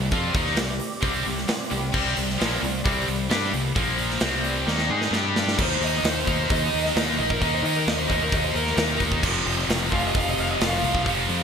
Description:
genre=hard rock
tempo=132 BPM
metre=4/4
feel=straight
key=unclear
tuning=A4 = 440 Hz
part: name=phased analog pad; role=sustained chords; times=0.0-5.6 s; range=C4 to D5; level=-36 LUFS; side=right 2 dB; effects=phaser, chorus
part: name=heavy high-gain guitar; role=riff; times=0.0-11.4 s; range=F2 to Ab4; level=-30 LUFS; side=left 1 dB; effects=distortion
part: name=high-gain distorted guitar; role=riff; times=0.0-11.4 s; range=F2 to Ab4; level=-28 LUFS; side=left 10 dB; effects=distortion
part: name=high-gain distorted guitar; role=riff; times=0.0-11.4 s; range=F2 to Ab4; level=-29 LUFS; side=right 10 dB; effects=distortion
part: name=growling fingered electric bass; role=bass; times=0.0-11.4 s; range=F1 to Eb3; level=-29 LUFS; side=equal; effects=overdrive
part: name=big rock drum kit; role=drums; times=0.1-11.4 s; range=crash cymbal, hi-hat, kick drum, snare drum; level=-26 LUFS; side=right 1 dB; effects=gated reverb
part: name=bluesy overdriven lead guitar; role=melody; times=5.6-11.1 s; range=Bb4 to F5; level=-27 LUFS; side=equal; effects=distortion
room=moderate lush hall reverb, RT60 1.7 s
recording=bright 1980s-style digital production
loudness=-21 LUFS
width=side -6 dB against mid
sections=0.0-5.6 A section; 5.6-11.4 B section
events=drum fill 4.7-5.6; lead electric guitar solo 5.6-11.4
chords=0.0 Cm; 3.8 Bb5; 4.2 Cm; 5.1 G5; 5.6 Eb5; 9.2 F5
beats=| 0.12 0.57 1.03 1.48 | 1.94 2.39 2.85 3.30 | 3.76 4.22 4.67 5.13 | 5.58 6.04 6.50 6.95 | 7.41 7.87 8.32 8.78 | 9.23 9.69 10.15 10.60 | 11.06

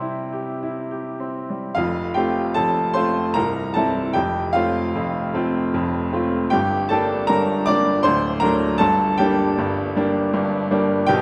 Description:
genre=classical, romantic character piece for solo piano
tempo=77 BPM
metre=3/4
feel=uneven beats, rubato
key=F major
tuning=A4 = 439 Hz
part: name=bright upright piano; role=solo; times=0.0-11.2 s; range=C1 to D6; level=-21 LUFS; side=equal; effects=none
room=moderate concert hall reverb, RT60 2.2 s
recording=dark, warm production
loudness=-21 LUFS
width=mono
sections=0.0-1.8 A section; 1.8-11.2 B section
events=none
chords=0.0 C; 1.8 F; 3.4 C7; 4.2 F; 6.5 Gm; 8.0 D7; 8.8 Gm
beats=0.01 0.92 | 1.77 2.57 3.36 | 4.15 4.95 5.74 | 6.52 7.30 8.05 | 8.80 9.57 10.34 | 11.09

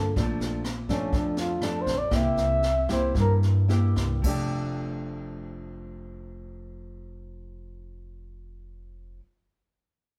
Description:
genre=bossa nova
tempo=106-125 BPM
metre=4/4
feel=straight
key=F major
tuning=A4 = 441 Hz
part: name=breathy flugelhorn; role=melody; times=0.0-3.3 s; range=Db4 to E5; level=-30 LUFS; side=equal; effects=none
part: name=nylon-string guitar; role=accompaniment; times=0.0-9.3 s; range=F2 to A4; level=-30 LUFS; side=equal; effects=none
part: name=upright bass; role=bass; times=0.0-9.2 s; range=F1 to G2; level=-35 LUFS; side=equal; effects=none
part: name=jazz brush drum kit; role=drums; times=0.2-4.4 s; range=crash cymbal, kick drum, rim click, snare drum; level=-34 LUFS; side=equal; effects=none
room=wet large studio reverb, RT60 1.2 s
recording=band playing live in one room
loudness=-26 LUFS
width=mono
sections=0.0-4.2 A section; 4.2-8.8 B section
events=flugelhorn solo 0.0-4.2; slowing down 0.2-4.2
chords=0.2 Bbmaj7; 2.1 C7; 4.2 F69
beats=| 0.16 0.64 1.12 1.61 | 2.11 2.62 3.15 3.68 | 4.24 4.80 5.37 5.93 | 6.50 7.07 7.63 8.20

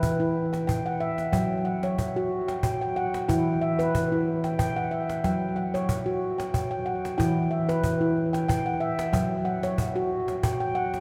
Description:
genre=world meditative, meditative tuned percussion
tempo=92 BPM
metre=3/4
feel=swing 54% on 16ths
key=unclear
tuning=A4 = 440 Hz
part: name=handpan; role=arpeggios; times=0.0-11.0 s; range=E3 to G5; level=-27 LUFS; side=equal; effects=tape echo
part: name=cajon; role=percussion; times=0.0-11.0 s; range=none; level=-34 LUFS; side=equal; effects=none
room=wet cathedral reverb, RT60 6.6 s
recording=in a vast, echoing space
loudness=-27 LUFS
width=mono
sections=0.0-11.0 A section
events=none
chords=0.0 E5; 1.3 F#5; 3.3 E5; 5.2 F#5; 7.2 E5; 9.1 F#5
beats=0.04 0.69 | 1.34 1.99 2.64 | 3.29 3.94 4.59 | 5.24 5.89 6.54 | 7.19 7.84 8.49 | 9.14 9.79 10.44

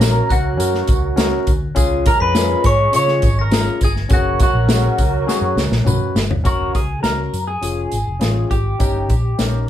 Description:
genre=uptempo 1960s-style soul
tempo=102 BPM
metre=4/4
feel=straight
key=F# major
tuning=A4 = 440 Hz
part: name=electric guitar through a small old amp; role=melody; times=0.0-9.6 s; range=F#4 to C#5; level=-21 LUFS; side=equal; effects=phaser
part: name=glockenspiel with hard plastic mallets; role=second line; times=0.0-5.5 s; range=F#6 to C#7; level=-32 LUFS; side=left 6 dB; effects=none
part: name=mellow horn section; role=second line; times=0.0-6.1 s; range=E#3 to A#4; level=-26 LUFS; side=right 7 dB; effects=none
part: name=barky tine electric piano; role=accompaniment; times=0.0-9.7 s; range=C#4 to B4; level=-23 LUFS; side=left 4 dB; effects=none
part: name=vintage muted fingered electric bass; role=bass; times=0.0-9.7 s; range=E#1 to C#3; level=-20 LUFS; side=equal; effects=none
part: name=natural country drum kit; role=drums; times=0.0-9.5 s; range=hi-hat, kick drum, snare drum, toms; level=-18 LUFS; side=equal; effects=none
part: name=tambourine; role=percussion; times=0.0-9.5 s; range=none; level=-33 LUFS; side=right 7 dB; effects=none
room=wet studio reverb, RT60 0.5 s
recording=band playing live in one room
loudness=-14 LUFS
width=side -11 dB against mid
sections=0.0-6.5 A section; 6.5-9.7 B section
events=drum fill 5.3-6.5; tine electric piano fill 9.4-9.7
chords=0.0 F#; 1.8 C#; 4.1 F#sus2; 6.5 F#; 7.6 C#/E#; 8.8 D#7/G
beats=0.01 0.60 1.18 | 1.77 2.36 2.94 3.53 | 4.11 4.70 5.29 5.87 | 6.46 7.04 7.63 8.22 | 8.80 9.39

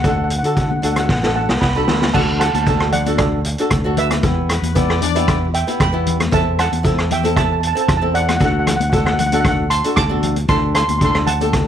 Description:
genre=calypso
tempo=115 BPM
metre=4/4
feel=straight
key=unclear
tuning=A4 = 440 Hz
part: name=steel pan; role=melody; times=0.0-11.5 s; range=A4 to D6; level=-20 LUFS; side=right 3 dB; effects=none
part: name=flamenco guitar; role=accompaniment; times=0.0-11.7 s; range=B3 to A4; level=-22 LUFS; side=left 1 dB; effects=none
part: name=fingered electric bass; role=bass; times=0.0-11.7 s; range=A1 to D3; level=-20 LUFS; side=equal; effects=none
part: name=street-band drum kit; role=drums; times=0.0-11.7 s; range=crash cymbal, hi-hat, kick drum, rim click, snare drum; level=-19 LUFS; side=equal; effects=none
part: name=congas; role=percussion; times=0.7-11.5 s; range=none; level=-27 LUFS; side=left 15 dB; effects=none
part: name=warm horn section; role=second line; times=4.5-5.4 s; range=B3 to D5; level=-23 LUFS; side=left 15 dB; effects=slapback echo
room=studio reverb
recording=1960s-style stereo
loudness=-14 LUFS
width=side -9 dB against mid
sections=0.0-2.1 A section; 2.1-11.7 B section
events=drum fill 1.1-2.1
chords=0.0 D7; 2.1 D; 4.2 Em; 6.3 Am/E; 8.4 D; 10.5 D7sus4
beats=| 0.04 0.57 1.09 1.62 | 2.14 2.67 3.19 3.71 | 4.23 4.75 5.28 5.80 | 6.32 6.84 7.37 7.89 | 8.41 8.93 9.45 9.97 | 10.50 11.02 11.54

